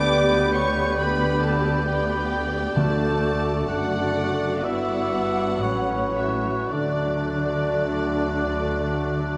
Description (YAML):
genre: classical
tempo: 51-68 BPM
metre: 4/4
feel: rubato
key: D major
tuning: A4 = 440 Hz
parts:
  - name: warm symphonic violin section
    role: melody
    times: 0.0-9.4 s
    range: D5 to D6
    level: -35 LUFS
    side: equal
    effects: none
  - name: mellow concert flute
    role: second line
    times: 0.0-9.4 s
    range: E6 to G6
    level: -34 LUFS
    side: equal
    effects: none
  - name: rich symphonic violin section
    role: second line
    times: 0.0-9.4 s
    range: B4 to F#5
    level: -36 LUFS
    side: equal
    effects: none
  - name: warm clarinet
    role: second line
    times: 0.0-9.4 s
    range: D4 to D5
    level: -34 LUFS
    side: equal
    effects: none
  - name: warm cor anglais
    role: second line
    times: 0.0-9.4 s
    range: B4 to E5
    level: -33 LUFS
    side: equal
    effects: none
  - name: mellow bassoon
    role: accompaniment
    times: 0.0-9.4 s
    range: G3 to B3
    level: -33 LUFS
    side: equal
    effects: none
  - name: warm symphonic viola section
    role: accompaniment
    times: 0.0-9.4 s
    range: F#3 to G4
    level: -34 LUFS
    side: equal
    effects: none
  - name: mellow French horn section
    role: sustained chords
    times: 0.0-9.4 s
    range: A3 to G4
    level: -33 LUFS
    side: equal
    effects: none
  - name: concert harp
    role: arpeggios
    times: 0.0-9.4 s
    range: G2 to B5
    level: -35 LUFS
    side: equal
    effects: none
  - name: dark symphonic cello section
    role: bass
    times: 0.0-9.4 s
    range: D2 to D3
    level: -32 LUFS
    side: equal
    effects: none
  - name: warm symphonic double bass section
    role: bass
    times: 0.0-9.4 s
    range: F#1 to D2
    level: -34 LUFS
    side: equal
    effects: none
  - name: timpani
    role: percussion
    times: 0.0-4.1 s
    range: D3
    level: -31 LUFS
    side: equal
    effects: none
room: wet scoring stage reverb, RT60 1.9 s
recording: nothing above 11.0 kHz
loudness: -23 LUFS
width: mono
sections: 0.0-9.4 A section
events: none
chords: 0.0 G/D; 2.8 D; 4.6 Em/G; 5.6 A69; 6.7 D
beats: 0.09 0.98 1.87 | 2.76 3.69 4.64 5.62 | 6.72 7.85 8.94